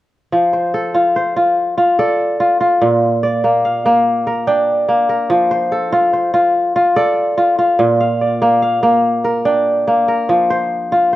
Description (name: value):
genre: west african traditional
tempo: 96 BPM (dotted quarters)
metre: 12/8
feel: straight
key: F major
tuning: A4 = 440 Hz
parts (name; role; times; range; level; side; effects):
- kora; arpeggios; 0.3-11.2 s; Bb2 to G5; -12 LUFS; equal; none
room: light reverb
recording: worn, warbling old tape, cassette tape, warbly pitch drift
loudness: -12 LUFS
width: side -15 dB against mid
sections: 0.3-11.2 A section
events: none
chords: 0.3 F; 2.8 Bb; 5.3 F; 7.8 Bb; 10.3 F5